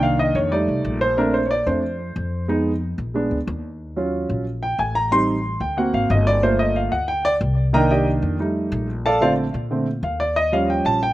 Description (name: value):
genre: jazz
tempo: 183 BPM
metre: 4/4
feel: straight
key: Bb major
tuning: A4 = 440 Hz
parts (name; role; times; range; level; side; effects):
- warm concert grand piano; accompaniment; 0.0-11.1 s; D3 to C6; -19 LUFS; right 1 dB; slapback echo
- upright bass; bass; 0.0-11.1 s; G1 to Bb2; -24 LUFS; left 1 dB; none
room: little or no reverb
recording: recorded outdoors, with no room sound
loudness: -18 LUFS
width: side -16 dB against mid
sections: 0.0-3.8 A section; 3.8-11.1 A section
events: grand piano solo 0.0-11.1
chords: 0.0 Cm9; 0.5 F7; 1.2 Bbmaj9; 2.5 Fm7b5; 3.1 Bb7b9; 3.8 Ebm9; 5.1 Am7b5; 5.8 Daug7; 6.4 Gm9; 7.7 Cm9; 8.4 F9; 9.1 Bbmaj9; 10.4 Eb7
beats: 0.19 0.52 0.85 | 1.18 1.50 1.83 2.16 | 2.49 2.82 3.15 3.48 | 3.80 4.13 4.46 4.79 | 5.12 5.45 5.77 6.10 | 6.43 6.76 7.08 7.41 | 7.74 8.07 8.40 8.72 | 9.05 9.38 9.71 10.03 | 10.36 10.69 11.02